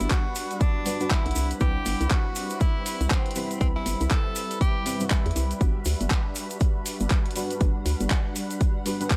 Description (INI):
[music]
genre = deep house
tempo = 120 BPM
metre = 4/4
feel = swing 60% on 16ths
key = G major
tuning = A4 = 440 Hz
[part]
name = bright tenor saxophone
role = melody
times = 0.0-5.5 s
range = C4 to A4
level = -35 LUFS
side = equal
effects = analog delay
[part]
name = warm analog pad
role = sustained chords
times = 0.0-9.2 s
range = G3 to B5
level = -40 LUFS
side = equal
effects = chorus, sidechain pumping
[part]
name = hollow knocking FM bass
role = bass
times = 0.0-8.1 s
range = G1 to E2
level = -28 LUFS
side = equal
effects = sidechain pumping
[part]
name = deep house drum kit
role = drums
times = 0.0-9.2 s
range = handclaps, hi-hat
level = -34 LUFS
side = equal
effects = none
[part]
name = egg shaker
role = percussion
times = 0.0-9.2 s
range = none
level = -40 LUFS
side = equal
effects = none
[part]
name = granular cloud pad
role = texture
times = 0.0-9.2 s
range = G3 to B5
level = -39 LUFS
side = equal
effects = built-in reverb, sidechain pumping
[part]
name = electronic kick drum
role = drums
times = 0.1-9.2 s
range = none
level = -26 LUFS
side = equal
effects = none
[part]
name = deep mellow chord stab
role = stabs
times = 0.9-9.2 s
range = G3 to B4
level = -34 LUFS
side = equal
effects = chorus, phaser, sidechain pumping
[sound]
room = little or no reverb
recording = none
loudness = -25 LUFS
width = mono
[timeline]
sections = 0.0-9.2 A section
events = none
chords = 0.0 Gmaj7; 1.4 Cmaj7; 5.6 Gmaj7